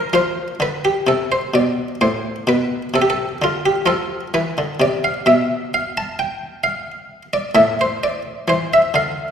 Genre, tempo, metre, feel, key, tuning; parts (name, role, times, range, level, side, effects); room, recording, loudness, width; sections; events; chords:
classical, baroque-style suite movement for harpsichord; 65 BPM; 4/4; rubato; A4 = 440 Hz
buff-stop harpsichord; solo; 0.0-9.3 s; A2 to A5; -16 LUFS; equal
wet recital hall reverb, RT60 1.8 s; recorded in a church or concert hall; -16 LUFS; side -8 dB against mid
0.0-9.3 A section
0.1 F; 3.9 Bdim; 7.6 Am